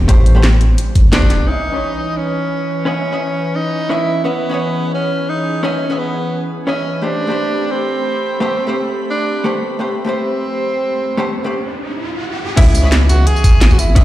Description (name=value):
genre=liquid drum and bass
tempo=173 BPM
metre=4/4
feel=swing 54% on 16ths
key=unclear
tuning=A4 = 441 Hz
part: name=vintage hollow-body jazz guitar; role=accompaniment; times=0.0-14.0 s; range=A3 to E5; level=-22 LUFS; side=left 1 dB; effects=low-pass filter, dub echo
part: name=airy breathy pad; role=sustained chords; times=0.0-14.0 s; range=E3 to B5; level=-24 LUFS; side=left 1 dB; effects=chorus, sidechain pumping
part: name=dark detuned saw bass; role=bass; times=0.0-1.5, 12.6-14.0 s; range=E1 to C#2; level=-12 LUFS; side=equal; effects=none
part: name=drum and bass drum kit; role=drums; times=0.1-1.4, 12.6-14.0 s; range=crash cymbal, hi-hat, snare drum, tambourine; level=-19 LUFS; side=equal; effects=low-pass filter on hats, low-pass filter on snare, low-pass filter on cymbals, low-pass filter on perc, low-pass filter on room
part: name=electronic kick drum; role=drums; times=0.1-1.3, 12.6-14.0 s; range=none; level=-10 LUFS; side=equal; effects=none
part: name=warm tenor saxophone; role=melody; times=1.1-14.0 s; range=B3 to G#4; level=-20 LUFS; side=right 1 dB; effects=dub echo
part: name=riser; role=sound effects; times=10.7-12.6 s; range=none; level=-26 LUFS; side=equal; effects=none
room=light reverb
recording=played on a big sound system in a bare room, large studio reverb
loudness=-14 LUFS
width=side -14 dB against mid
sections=0.0-1.5 A section; 1.5-12.6 B section; 12.6-14.0 C section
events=riser 10.7-12.6; drop 12.6-14.0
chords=0.0 Am9; 1.5 C#m9; 7.0 Am9; 12.6 C#m9